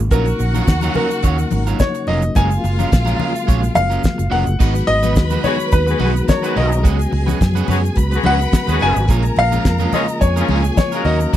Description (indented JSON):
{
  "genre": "disco",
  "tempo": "107 BPM",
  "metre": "4/4",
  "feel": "straight",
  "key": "G# dorian",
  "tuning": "A4 = 440 Hz",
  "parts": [
    { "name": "electric guitar at the edge of break-up", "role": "accompaniment", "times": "0.0-11.4 s", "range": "F#3 to C#5", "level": "-25 LUFS", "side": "right 10 dB", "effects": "none" },
    { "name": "mellow tonewheel organ", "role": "sustained chords", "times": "0.0-11.4 s", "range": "C#3 to F#4", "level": "-24 LUFS", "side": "left 3 dB", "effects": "chorus vibrato, fast rotary speaker" },
    { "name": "fingered electric bass", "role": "bass", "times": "0.0-11.4 s", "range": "E#1 to F#2", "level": "-18 LUFS", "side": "right 1 dB", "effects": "none" },
    { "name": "clear baby grand piano", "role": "melody", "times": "0.1-11.4 s", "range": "A#4 to G#5", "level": "-21 LUFS", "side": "left 2 dB", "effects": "none" },
    { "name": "warm studio violin section", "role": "second line", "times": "0.1-11.4 s", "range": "E#4 to B5", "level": "-26 LUFS", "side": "left 1 dB", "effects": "none" },
    { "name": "damped 70s drum kit", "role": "drums", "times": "0.1-11.4 s", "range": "crash cymbal, hi-hat, kick drum, snare drum", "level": "-15 LUFS", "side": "equal", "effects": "none" },
    { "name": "egg shaker", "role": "percussion", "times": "0.1-11.4 s", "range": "none", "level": "-36 LUFS", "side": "right 27 dB", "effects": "none" },
    { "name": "congas", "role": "percussion", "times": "0.4-11.2 s", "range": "none", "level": "-26 LUFS", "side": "left 6 dB", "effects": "none" },
    { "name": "warm horn section", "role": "stabs", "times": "5.4-11.3 s", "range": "E#3 to B4", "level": "-23 LUFS", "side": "left 4 dB", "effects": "none" }
  ],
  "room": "little or no reverb",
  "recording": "dry, close 1970s-style studio recording",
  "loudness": "-14 LUFS",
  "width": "side -12 dB against mid",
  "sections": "0.0-4.6 A section; 4.6-11.4 B section",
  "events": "none",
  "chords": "0.1 D#m9/A#; 2.4 F#maj9; 4.6 G#m7; 6.8 C#7sus4; 9.1 A#m7"
}